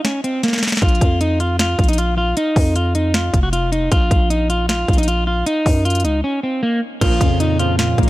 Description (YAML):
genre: hip hop, trap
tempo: 155 BPM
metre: 4/4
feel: half-time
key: Bb minor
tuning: A4 = 440 Hz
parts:
  - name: electric guitar at the edge of break-up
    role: melody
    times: 0.0-8.1 s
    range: Bb3 to Gb4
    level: -19 LUFS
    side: equal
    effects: ping-pong delay
  - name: trap drum kit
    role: drums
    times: 0.0-8.1 s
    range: crash cymbal, hi-hat, kick drum, snare drum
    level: -18 LUFS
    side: equal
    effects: none
  - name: growling 808-style bass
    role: bass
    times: 0.8-8.1 s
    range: F1 to Gb2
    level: -19 LUFS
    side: equal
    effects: none
  - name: warbly lo-fi synth keys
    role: accompaniment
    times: 7.0-8.1 s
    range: Bb2 to Bb3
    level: -20 LUFS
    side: equal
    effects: chorus, phaser
  - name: dark brass ensemble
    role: stabs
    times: 7.0-7.4 s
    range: Bb2 to F3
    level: -28 LUFS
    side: right 4 dB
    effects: none
room: digital ambience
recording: none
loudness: -15 LUFS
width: side -17 dB against mid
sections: 0.0-7.0 A section; 7.0-8.1 B section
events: break 0.0-0.8, 6.2-7.0; drum fill 0.4-0.8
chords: 0.0 N.C.; 0.8 Bb5; 2.4 Ebsus2/F; 3.9 Bb5; 5.5 Ebm; 7.0 Bbm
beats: 0.05 0.43 | 0.82 1.21 1.59 1.98 | 2.37 2.76 3.14 3.53 | 3.92 4.30 4.69 5.08 | 5.47 5.85 6.24 6.63 | 7.01 7.40 7.79